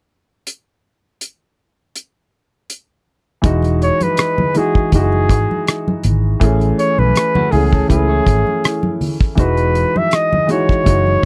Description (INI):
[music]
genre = lush 1970s-style soul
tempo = 81 BPM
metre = 4/4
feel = swing 54% on 16ths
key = E major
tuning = A4 = 441 Hz
[part]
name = damped 70s drum kit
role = drums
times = 0.5-11.1 s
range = hi-hat, kick drum, rim click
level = -18 LUFS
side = equal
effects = none
[part]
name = warm baby grand piano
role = accompaniment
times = 3.4-11.3 s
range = E3 to G#4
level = -21 LUFS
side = equal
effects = none
[part]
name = vintage muted fingered electric bass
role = bass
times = 3.4-11.2 s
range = E1 to C#2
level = -18 LUFS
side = equal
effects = none
[part]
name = congas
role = percussion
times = 3.4-11.2 s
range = none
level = -24 LUFS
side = equal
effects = none
[part]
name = warm flugelhorn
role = melody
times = 3.8-11.3 s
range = G#4 to E5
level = -20 LUFS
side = equal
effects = none
[part]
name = electric guitar through a small old amp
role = riff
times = 7.4-9.2 s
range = A3 to C#5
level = -29 LUFS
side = equal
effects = none
[sound]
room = little or no reverb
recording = dry, close 1970s-style studio recording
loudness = -15 LUFS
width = mono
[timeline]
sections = 0.5-3.4 A section; 3.4-11.3 B section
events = none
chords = 0.5 N.C.; 3.4 Emaj9; 6.4 Amaj7; 9.4 Emaj9